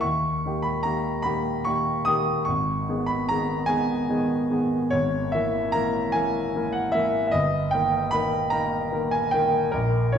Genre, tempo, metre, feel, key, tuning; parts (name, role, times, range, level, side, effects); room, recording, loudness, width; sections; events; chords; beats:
classical, romantic nocturne for solo piano; 50 BPM (dotted quarters); 12/8; rubato; A4 = 440 Hz
warm grand piano; solo; 0.0-10.2 s; G1 to D#6; -22 LUFS; equal
wet recital hall reverb, RT60 1.3 s; heard from further back in the room; -22 LUFS; side -8 dB against mid
0.0-10.2 A section
0.0 D#; 2.5 G#m; 4.9 F#9/G#; 7.3 D#/G
| 0.03 1.26 2.47 3.68 | 4.91 6.13 7.32 8.52 | 9.72